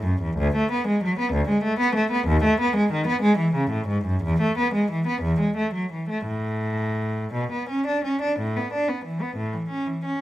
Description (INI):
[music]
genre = classical, baroque-style suite movement for unaccompanied cello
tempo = 56-65 BPM (dotted quarters)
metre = 6/8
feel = rubato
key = A major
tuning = A4 = 437 Hz
[part]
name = rich cello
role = solo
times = 0.0-10.2 s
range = D2 to D4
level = -21 LUFS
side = equal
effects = none
[sound]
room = light reverb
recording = close, detailed microphones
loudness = -21 LUFS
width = side -14 dB against mid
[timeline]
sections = 0.0-8.4 A section; 8.4-10.2 B section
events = none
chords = none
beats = | 0.38 1.32 | 2.27 3.23 | 4.24 5.22 | 6.27 7.34 | 8.39 9.37